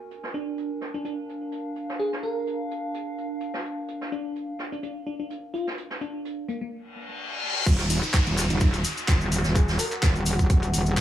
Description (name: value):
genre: bass house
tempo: 127 BPM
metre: 4/4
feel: swing 55% on 16ths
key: Eb harmonic minor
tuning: A4 = 440 Hz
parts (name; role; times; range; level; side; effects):
- warbly tape-like pad; texture; 0.0-11.0 s; D4 to Ab5; -35 LUFS; right 1 dB; chorus, built-in reverb, sidechain pumping
- jazz brush drum kit; drums; 0.1-11.0 s; hi-hat, snare drum; -36 LUFS; right 2 dB; sidechain pumping on hats, high-pass filter on hats, low-pass filter on hats, high-pass filter on snare, low-pass filter on snare, high-pass filter on room, low-pass filter on room
- bell-like FM electric piano; melody; 0.3-10.2 s; Bb3 to Bb4; -32 LUFS; equal; chorus, tape echo
- reverse cymbal and downlifter; sound effects; 7.0-11.0 s; none; -30 LUFS; left 2 dB; none
- metallic wobble bass; bass; 7.7-11.0 s; Eb1; -24 LUFS; equal; distortion, chorus, tube saturation, sidechain pumping
- electronic kick drum; drums; 7.7-11.0 s; none; -20 LUFS; equal; overdrive
- garage drum kit; drums; 7.7-11.0 s; crash cymbal, handclaps, hi-hat; -30 LUFS; left 1 dB; low-pass filter on hats, low-pass filter on cymbals, low-pass filter on snare
- cabasa; percussion; 7.7-11.0 s; none; -34 LUFS; left 3 dB; none
room: light reverb, small room ambience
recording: none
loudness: -24 LUFS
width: side -11 dB against mid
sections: 0.0-7.7 A section; 7.7-11.0 B section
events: reverse cymbal 7.0-7.7; drop 7.7-11.0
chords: 0.1 Bb; 7.7 Ebm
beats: | 0.11 0.58 1.05 1.52 | 2.00 2.47 2.94 3.41 | 3.88 4.36 4.83 5.30 | 5.78 6.25 6.72 7.19 | 7.67 8.14 8.61 9.08 | 9.55 10.03 10.50 10.97